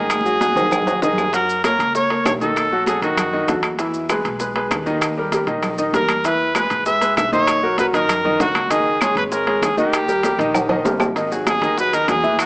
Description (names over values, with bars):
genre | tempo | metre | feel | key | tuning
latin, salsa | 195 BPM | 4/4 | straight | G# minor | A4 = 439 Hz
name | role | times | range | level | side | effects
bright trumpet | melody | 0.0-3.6, 5.9-12.5 s | F#4 to E5 | -19 LUFS | equal | cassette tape
clear baby grand piano | accompaniment | 0.0-12.5 s | D#3 to F#5 | -20 LUFS | equal | none
upright bass | bass | 0.0-12.5 s | G#1 to G#2 | -32 LUFS | equal | none
bongos | percussion | 0.1-12.5 s | none | -28 LUFS | left 1 dB | none
claves | percussion | 0.1-12.5 s | none | -29 LUFS | left 1 dB | none
congas | percussion | 0.1-12.5 s | none | -29 LUFS | equal | none
maracas | percussion | 0.1-12.5 s | none | -36 LUFS | right 1 dB | none
timbales | percussion | 0.1-12.5 s | none | -24 LUFS | right 1 dB | none
room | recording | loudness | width
moderate lush hall reverb, RT60 2.3 s | home recording on cassette, small speaker sound | -16 LUFS | side -26 dB against mid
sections
0.0-1.3 A section; 1.3-11.2 B section; 11.2-12.5 A section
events
drum fill 0.1-1.3, 10.5-11.2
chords
0.1 G#5; 1.3 F#; 2.6 B7; 3.8 Emaj7; 5.0 D#; 6.3 E; 7.5 Bmaj7; 8.7 C#sus2; 9.9 D#; 11.2 G#5